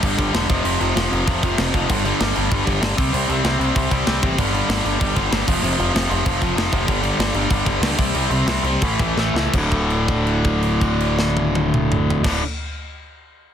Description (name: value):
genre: punk rock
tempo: 164-193 BPM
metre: 4/4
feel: straight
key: unclear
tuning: A4 = 442 Hz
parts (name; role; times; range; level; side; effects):
- overdriven electric guitar; riff; 0.0-12.4 s; D2 to C4; -20 LUFS; left 1 dB; none
- growling picked electric bass; bass; 0.0-12.4 s; D1 to C#2; -24 LUFS; equal; overdrive
- tight metal drum kit; drums; 0.0-12.3 s; crash cymbal, kick drum, snare drum, toms; -22 LUFS; equal; soft clipping on kick
room: little or no reverb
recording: dense, heavily limited modern master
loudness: -17 LUFS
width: side -9 dB against mid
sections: 0.0-9.5 A section; 9.5-12.5 B section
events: slowing down 6.9-9.5; drum fill 9.2-9.5; held note 9.5-12.2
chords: 0.5 F5; 1.9 G5; 3.0 C5; 4.4 G5; 5.5 F5; 6.9 G5; 8.0 C5; 8.8 A; 9.5 D5